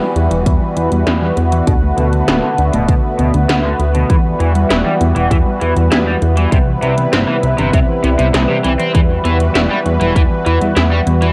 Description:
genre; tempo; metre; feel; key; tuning
synthwave; 99 BPM; 4/4; straight; E minor; A4 = 440 Hz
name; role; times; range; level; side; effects
lush unison pad; sustained chords; 0.0-11.3 s; C3 to B4; -20 LUFS; equal; chorus, sidechain pumping
thumb-piano-like synth pluck; arpeggios; 0.0-11.3 s; D3 to E4; -25 LUFS; equal; chorus, analog delay
crunchy overdriven guitar; riff; 0.0-11.3 s; B2 to E4; -24 LUFS; equal; analog chorus, low-pass filter, analog delay
chorused synth bass; bass; 0.2-11.3 s; D1 to E2; -18 LUFS; equal; none
80s electronic pad drums; drums; 0.2-11.3 s; hi-hat, snare drum; -22 LUFS; equal; small room ambience, cassette tape
electronic kick drum; drums; 0.5-10.3 s; none; -16 LUFS; equal; small room ambience, cassette tape
room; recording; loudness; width
moderate spring reverb, RT60 1.9 s; home recording on cassette; -14 LUFS; mono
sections
0.0-11.3 A section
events
filter sweep on synth arpeggio sound 0.0-11.3; filter sweep on overdriven electric guitar 0.0-11.3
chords
0.0 Emadd9; 1.7 Bm7/D; 4.1 Emadd9; 6.5 Cmaj7; 8.9 Emadd9

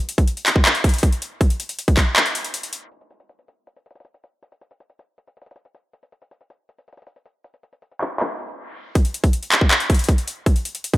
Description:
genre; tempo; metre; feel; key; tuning
hip hop; 159 BPM; 4/4; half-time; none; none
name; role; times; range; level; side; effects
trap drum kit; drums; 0.1-11.0 s; handclaps, hi-hat, kick drum; -17 LUFS; equal; overdrive
room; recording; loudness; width
light reverb; low-pass filter; -17 LUFS; side -17 dB against mid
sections
0.0-2.9 A section; 2.9-9.0 B section; 9.0-11.0 C section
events
kick muted 2.2-2.9; filter sweep 2.9-9.0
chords
none

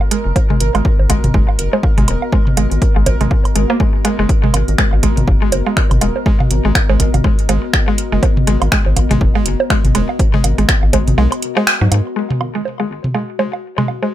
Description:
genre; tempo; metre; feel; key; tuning
minimal techno; 122 BPM; 4/4; swing 58% on 16ths; G# minor; A4 = 443 Hz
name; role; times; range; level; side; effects
electronic woodblock, bongos and toms; percussion; 0.0-14.1 s; none; -20 LUFS; right 3 dB; ping-pong delay
pulsing gated texture; texture; 0.0-12.2 s; A#4; -29 LUFS; right 7 dB; chorus, built-in reverb, sidechain pumping
warbly tape-like pad; texture; 0.0-14.1 s; B3 to D#5; -26 LUFS; left 4 dB; chorus, built-in reverb, sidechain pumping
mallet-like synth pluck; riff; 0.1-14.1 s; F#3 to A#3; -20 LUFS; equal; chorus, sidechain pumping, ping-pong delay
booming analog drum machine; drums; 0.1-12.0 s; finger snaps, hi-hat; -18 LUFS; right 1 dB; overdrive
rubbery square bass; bass; 0.3-14.0 s; D#1 to G#2; -16 LUFS; equal; sidechain pumping, high-pass filter
electronic kick drum; drums; 0.4-11.0 s; none; -15 LUFS; equal; none
room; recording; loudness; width
light reverb; none; -12 LUFS; side -13 dB against mid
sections
0.0-12.2 A section; 12.2-14.1 B section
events
fade-in on ambient pad 0.0-12.2; filter sweep on synth arpeggio sound 0.0-12.2; kick drops out 11.2-12.2; band accent 11.7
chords
0.0 G#m

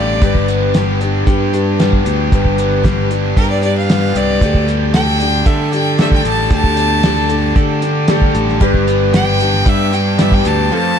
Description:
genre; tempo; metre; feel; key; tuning
folk rock and heartland rock; 114 BPM; 4/4; straight; G major; A4 = 441 Hz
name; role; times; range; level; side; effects
clear fiddle; melody; 0.0-11.0 s; Bb4 to A5; -18 LUFS; left 1 dB; none
picked steel-string acoustic guitar; accompaniment; 0.0-11.0 s; D3 to B4; -19 LUFS; left 5 dB; none
biting overdriven guitar; riff; 0.0-11.0 s; F2 to A4; -20 LUFS; right 2 dB; none
modern bright picked electric bass; bass; 0.0-10.7 s; G1 to D3; -17 LUFS; equal; none
cloth-damped thuddy drum kit; drums; 0.2-10.6 s; hi-hat, kick drum, snare drum; -15 LUFS; right 1 dB; none
bright concert grand piano; accompaniment; 4.4-11.0 s; F4 to D5; -27 LUFS; right 8 dB; none
tonewheel organ; sustained chords; 4.4-11.0 s; C4 to D5; -27 LUFS; equal; slow rotary speaker
room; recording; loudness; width
light reverb; dark, warm production; -11 LUFS; side -8 dB against mid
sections
0.0-11.0 A section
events
fiddle solo 0.0-11.0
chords
0.2 G; 4.4 Dsus4; 8.6 G

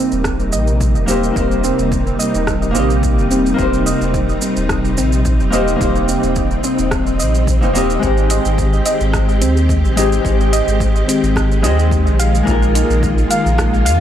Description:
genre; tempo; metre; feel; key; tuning
sunset chillout; 108 BPM; 4/4; swing 54% on 16ths; Eb major; A4 = 440 Hz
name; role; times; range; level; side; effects
nylon-string guitar; accompaniment; 0.0-14.0 s; Ab3 to Eb5; -20 LUFS; left 1 dB; auto-pan, dub echo
soft string machine; sustained chords; 0.0-14.0 s; C3 to G4; -20 LUFS; equal; ensemble chorus
soft round pluck; arpeggios; 0.0-14.0 s; C4 to F5; -21 LUFS; right 1 dB; wide subtle chorus, dub echo
warm sub bass; bass; 0.1-14.0 s; Eb1 to F2; -17 LUFS; equal; none
deep house drum kit; drums; 0.1-14.0 s; hi-hat, rim click, shaker; -25 LUFS; right 2 dB; overdrive, small room ambience
electronic kick drum; drums; 0.3-13.7 s; none; -22 LUFS; equal; overdrive, small room ambience
room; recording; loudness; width
light reverb; echo-heavy mix; -13 LUFS; side -10 dB against mid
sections
0.0-14.0 A section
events
none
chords
0.0 Eb6; 8.0 Abmaj7; 12.2 Bb7sus4

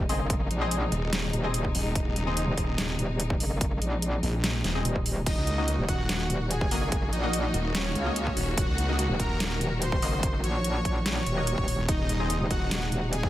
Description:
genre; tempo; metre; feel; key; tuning
heavy wobble dubstep; 145 BPM; 4/4; half-time; Eb dorian; A4 = 439 Hz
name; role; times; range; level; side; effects
warm studio string section; sustained chords; 0.0-13.3 s; C3 to Gb4; -35 LUFS; left 1 dB; sidechain pumping
metallic wobble bass; bass; 0.0-13.3 s; Eb1 to Db2; -28 LUFS; equal; chorus, overdrive
orchestra-hit-like synth stab; stabs; 0.1-12.3 s; Bb3 to Eb5; -35 LUFS; left 3 dB; built-in reverb, tape echo
dubstep drum kit; drums; 0.1-13.2 s; crash cymbal, hi-hat, snare drum; -31 LUFS; equal; overdrive
electronic kick drum; drums; 0.3-13.3 s; none; -29 LUFS; equal; overdrive
wobble bass; bass; 0.9-12.9 s; Eb1 to Db2; -29 LUFS; equal; chorus, overdrive
soft supersaw; melody; 5.3-13.3 s; Db4 to Db6; -33 LUFS; equal; tape echo
room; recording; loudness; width
light reverb, digital ambience; none; -25 LUFS; side -14 dB against mid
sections
0.0-13.3 A section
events
none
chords
0.0 Ab/Eb; 5.3 Ebm; 11.9 Ab/Eb

